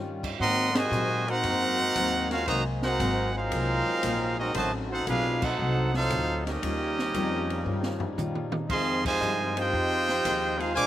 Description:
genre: jazz, big band swing.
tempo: 116 BPM.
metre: 4/4.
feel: swing 69% on 8ths.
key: unclear.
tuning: A4 = 436 Hz.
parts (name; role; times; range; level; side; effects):
fingerpicked steel-string acoustic guitar; accompaniment; 0.0-10.9 s; Ab2 to Ab4; -36 LUFS; left 4 dB; slapback echo.
warm trombone section; sustained chords; 0.0-10.9 s; C3 to Ab4; -37 LUFS; left 1 dB; none.
upright bass; bass; 0.0-10.9 s; Ab1 to Bb2; -32 LUFS; equal; none.
open jazz drum kit; drums; 0.2-10.9 s; crash cymbal, hi-hat, kick drum, ride cymbal, snare drum, toms; -35 LUFS; equal; none.
brilliant trumpet section; melody; 0.4-10.9 s; C4 to D6; -27 LUFS; right 1 dB; slapback echo.
clear trombone section; second line; 0.4-10.9 s; C3 to G4; -33 LUFS; right 2 dB; none.
room: little or no reverb.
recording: recorded outdoors, with no room sound.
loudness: -24 LUFS.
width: side -12 dB against mid.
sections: 0.0-10.9 A section.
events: band accent 0.7, 5.3, 9.0; drum fill 7.7-8.7.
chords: 0.4 Ab9; 4.6 Adim7; 6.6 Eb9; 8.7 Fm7.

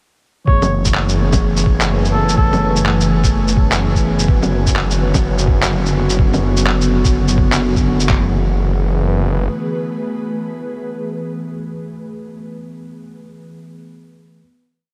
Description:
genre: future garage.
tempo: 126 BPM.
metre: 4/4.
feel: swing 61% on 16ths.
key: F# minor.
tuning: A4 = 440 Hz.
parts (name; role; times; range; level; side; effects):
mellow tine electric piano; accompaniment; 0.4-14.4 s; D3 to G#4; -24 LUFS; equal; analog chorus, sidechain pumping, delay.
trumpet with cup mute; melody; 0.5-2.8 s; A4 to C#5; -27 LUFS; equal; vintage 12-bit sampler grit, delay.
ethereal airy pad; sustained chords; 1.5-11.7 s; D3 to G#5; -26 LUFS; equal; ensemble chorus, built-in reverb, phaser, sidechain pumping.
swelling detuned saw bass; bass; 0.5-9.5 s; F#1; -20 LUFS; equal; sidechain pumping.
lo-fi sampler-style drum kit; drums; 0.5-8.2 s; handclaps, kick drum; -17 LUFS; equal; small room ambience.
drifting glass-harmonics texture; texture; 1.5-8.1 s; C#4 to C#5; -36 LUFS; equal; none.
electronic bongos, shaker and handclaps; drums; 0.6-8.1 s; none; -24 LUFS; equal; small room ambience.
room: moderate huge ambient reverb, RT60 7.8 s.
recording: dreamy mix soaked in reverb.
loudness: -16 LUFS.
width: mono.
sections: 0.5-8.1 groove; 8.1-11.9 final chord.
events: none.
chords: 0.5 F#m11; 4.3 Bm/F#; 8.1 F#m11.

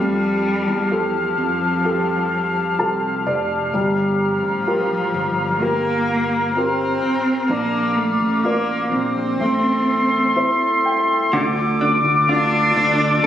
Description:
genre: pop ballad.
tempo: 64 BPM.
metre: 4/4.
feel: straight.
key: D minor.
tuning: A4 = 443 Hz.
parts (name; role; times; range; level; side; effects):
warm cello; melody; 0.0-13.3 s; F3 to D4; -22 LUFS; equal; none.
warm grand piano; accompaniment; 0.0-13.3 s; D3 to A5; -23 LUFS; equal; none.
warm woodwind section; sustained chords; 0.0-13.3 s; F4 to D6; -20 LUFS; left 1 dB; none.
fretless electric bass; bass; 0.0-13.3 s; F1 to F2; -26 LUFS; right 1 dB; ensemble chorus.
direct-recorded clean electric guitar; arpeggios; 11.3-13.3 s; D3 to F4; -24 LUFS; right 2 dB; tremolo.
room: moderate lush hall reverb, RT60 2.8 s.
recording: recorded on a phone in the room, studio reverb, compression.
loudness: -17 LUFS.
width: side -10 dB against mid.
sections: 0.0-11.3 A section; 11.3-13.3 B section.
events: grand piano fill 2.3-3.7, 9.9-11.3.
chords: 0.0 Fadd9; 3.7 Gm7; 7.5 Bb; 9.4 Am; 11.3 Dm.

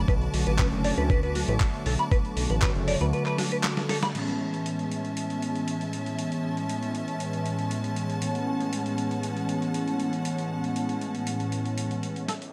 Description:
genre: nu-disco, nu disco.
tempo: 118 BPM.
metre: 4/4.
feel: straight.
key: A major.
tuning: A4 = 436 Hz.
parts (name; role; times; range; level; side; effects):
mellow synth brass; accompaniment; 0.0-12.3 s; A2 to C#4; -31 LUFS; equal; chorus, phaser, sidechain pumping, tape echo.
clear studio string section; sustained chords; 0.0-12.5 s; G#3 to D6; -38 LUFS; equal; sidechain pumping, low-pass filter.
fat analog bass; bass; 0.0-3.1 s; F#1 to D2; -30 LUFS; equal; sidechain pumping.
semi-hollow electric guitar; riff; 0.1-4.1, 12.3 s; F#4 to B5; -33 LUFS; equal; ensemble chorus, low-pass filter, tape echo.
dusty soul sampler-style drum kit; drums; 0.1-12.5 s; crash cymbal, handclaps, hi-hat, snare drum; -36 LUFS; equal; studio reverb.
electronic kick drum; drums; 0.1-2.7 s; none; -27 LUFS; equal; studio reverb.
riser; sound effects; 12.4-12.5 s; none; -50 LUFS; equal; none.
room: light reverb, digital ambience.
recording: none.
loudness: -28 LUFS.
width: mono.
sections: 0.0-4.2 A section; 4.2-12.3 B section.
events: filter sweep on clean electric guitar 0.0-4.2; drum fill 3.4-4.2, 12.3; band accent 4.0; riser 12.4.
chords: 0.0 Bm7; 4.2 Amaj7.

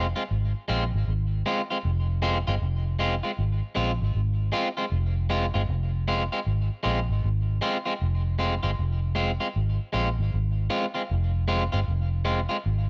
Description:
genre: roots reggae.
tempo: 78 BPM.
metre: 4/4.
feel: swing 64% on 16ths.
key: F minor.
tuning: A4 = 436 Hz.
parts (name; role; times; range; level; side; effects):
electric guitar at the edge of break-up; accompaniment; 0.0-12.6 s; Ab3 to F4; -31 LUFS; equal; tape echo.
vintage muted fingered electric bass; bass; 0.0-12.9 s; F1 to Bb1; -27 LUFS; equal; none.
room: light reverb.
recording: nothing above 7.8 kHz.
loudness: -26 LUFS.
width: mono.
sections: 0.0-12.9 A section.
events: none.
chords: 0.0 Fm.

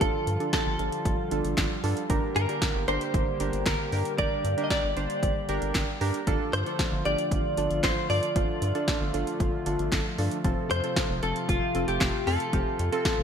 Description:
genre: synth-pop.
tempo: 115 BPM.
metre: 4/4.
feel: straight.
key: G minor.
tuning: A4 = 440 Hz.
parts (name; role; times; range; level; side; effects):
direct-recorded clean electric guitar; melody; 0.0-13.2 s; F4 to Eb5; -29 LUFS; equal; wide subtle chorus, ping-pong delay.
warm analog keys; accompaniment; 0.0-13.2 s; C4 to C5; -32 LUFS; right 3 dB; chorus.
chorused pulse-width pad; sustained chords; 0.0-13.2 s; C3 to G4; -34 LUFS; equal; none.
round analog bass; bass; 0.0-13.2 s; F1 to G2; -30 LUFS; equal; none.
punchy analog drum machine; drums; 0.0-13.2 s; handclaps, hi-hat, kick drum, snare drum; -29 LUFS; equal; none.
room: moderate lush hall reverb, RT60 1.7 s.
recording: bright 1980s-style digital production.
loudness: -24 LUFS.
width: side -7 dB against mid.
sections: 0.0-13.2 A section.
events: none.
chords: 0.0 Dm/G; 2.1 Gm; 6.3 Dm/G; 10.4 F.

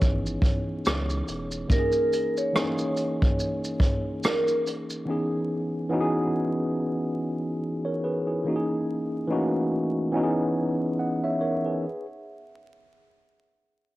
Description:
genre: lo-fi hip hop.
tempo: 71 BPM.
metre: 4/4.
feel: swing 55% on 16ths.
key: C# dorian.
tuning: A4 = 440 Hz.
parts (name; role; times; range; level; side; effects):
vibraphone with soft mallets; melody; 0.0-4.6 s; A#4 to C#5; -29 LUFS; right 1 dB; tape echo.
tine electric piano; accompaniment; 0.0-12.1 s; E3 to F#5; -26 LUFS; equal; medium stereo tremolo, cassette tape.
warm sub bass; bass; 0.0-1.6 s; E1 to C#2; -32 LUFS; equal; none.
vintage brush drum kit; drums; 0.0-5.1 s; hi-hat, kick drum, rim click, shaker; -26 LUFS; equal; cassette tape.
room: light reverb, studio reverb.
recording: home recording on cassette, vinyl crackle.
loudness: -24 LUFS.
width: side -17 dB against mid.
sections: 0.0-11.8 A section.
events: none.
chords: 0.0 C#m7; 1.7 C#m69/E; 5.1 C#m7; 8.5 F#13; 10.1 C#m7.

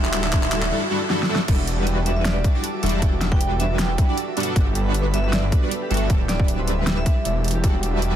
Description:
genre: future bass.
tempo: 156 BPM.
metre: 4/4.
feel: swing 54% on 16ths, half-time.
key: E minor.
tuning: A4 = 441 Hz.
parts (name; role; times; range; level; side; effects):
vibraphone with medium hard mallets; melody; 0.0-7.4 s; D5 to G5; -31 LUFS; right 1 dB; sidechain pumping, ping-pong delay.
airy breathy pad; sustained chords; 0.0-8.2 s; G3 to D6; -36 LUFS; equal; none.
concert harp; arpeggios; 0.0-8.2 s; D4 to D5; -33 LUFS; right 1 dB; sidechain pumping, tape echo.
big bright polysynth; riff; 0.0-8.2 s; G3 to D5; -26 LUFS; right 1 dB; ensemble chorus, sidechain pumping.
wide detuned saw bass; bass; 0.0-8.2 s; D1 to G1; -23 LUFS; equal; chorus, sidechain pumping.
pop drum kit; drums; 0.0-8.1 s; crash cymbal, handclaps, hi-hat, snare drum; -26 LUFS; equal; overdrive.
riser; sound effects; 0.0-0.7 s; none; -34 LUFS; right 1 dB; none.
electronic kick drum; drums; 0.3-7.7 s; none; -19 LUFS; equal; overdrive.
room: light reverb.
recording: dense, heavily limited modern master.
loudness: -18 LUFS.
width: side -10 dB against mid.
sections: 0.0-1.5 A section; 1.5-8.2 B section.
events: build-up 0.0-1.5; drum fill 0.0-0.7, 1.1-1.5; riser 0.0-0.7; drop 1.5-8.2.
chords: 0.0 D9sus4; 1.5 Em11; 4.4 Gmaj9; 6.1 D9sus4; 7.6 Em11.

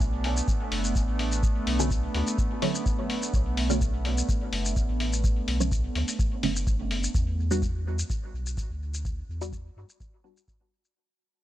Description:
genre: dub techno.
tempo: 126 BPM.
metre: 4/4.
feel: straight.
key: unclear.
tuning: A4 = 440 Hz.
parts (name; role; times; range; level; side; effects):
warbly tape-like pad; sustained chords; 0.0-7.1 s; A3 to D4; -32 LUFS; right 2 dB; chorus, built-in reverb, sidechain pumping.
filtered dub chord stab; stabs; 0.0-10.5 s; D3 to F#4; -33 LUFS; right 2 dB; phaser, sidechain pumping, dub echo.
pure sine sub bass; bass; 0.0-9.8 s; F#1 to G2; -29 LUFS; equal; sidechain pumping.
electronic kick drum; drums; 0.0-10.6 s; none; -28 LUFS; equal; studio reverb.
electronic shaker and hi-hat; drums; 0.0-10.9 s; none; -34 LUFS; left 3 dB; studio reverb.
room: little or no reverb.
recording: none.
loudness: -25 LUFS.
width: side -14 dB against mid.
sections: 0.0-7.1 A section; 7.1-11.0 B section.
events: filter sweep on synth stab 0.0-7.1; fade-out 7.1-11.0.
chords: 0.0 Bm7; 7.1 Em7.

